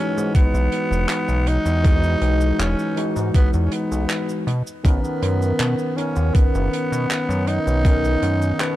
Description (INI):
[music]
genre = vaporwave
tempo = 80 BPM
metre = 4/4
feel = straight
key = B major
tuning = A4 = 445 Hz
[part]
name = growling tenor saxophone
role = melody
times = 0.0-8.8 s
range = B3 to D#4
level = -25 LUFS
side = equal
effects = vintage 12-bit sampler grit, tape echo
[part]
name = overdriven tine electric piano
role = accompaniment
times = 0.0-8.8 s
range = D#3 to A#4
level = -24 LUFS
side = left 1 dB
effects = wide subtle chorus
[part]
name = chorused synth bass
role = bass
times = 0.2-8.8 s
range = E1 to B2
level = -21 LUFS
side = equal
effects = none
[part]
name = open jazz drum kit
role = drums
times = 0.2-8.8 s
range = cabasa, handclaps, hi-hat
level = -29 LUFS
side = right 1 dB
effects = none
[part]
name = electronic kick drum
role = drums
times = 0.3-8.0 s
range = none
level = -16 LUFS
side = equal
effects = overdrive
[sound]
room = studio ambience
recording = dark, warm production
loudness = -17 LUFS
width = side -14 dB against mid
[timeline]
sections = 0.0-8.8 A section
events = none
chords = 0.0 Emaj9; 4.5 Bmaj9